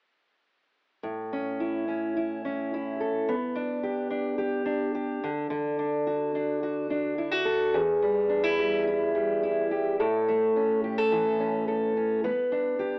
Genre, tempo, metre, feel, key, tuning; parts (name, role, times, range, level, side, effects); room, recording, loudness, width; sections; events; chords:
pop; 107 BPM; 4/4; straight; A4 = 443 Hz
fingerpicked steel-string acoustic guitar; accompaniment; 1.0-13.0 s; E2 to B4; -24 LUFS; equal; cassette tape
wet spring reverb, RT60 1.4 s, small room ambience; home recording on cassette, AM radio sound; -24 LUFS; side -36 dB against mid
1.0-10.0 A section; 10.0-13.0 B section
1.0 A; 3.3 G/B; 5.2 D; 7.8 Em; 10.0 A; 12.2 G/B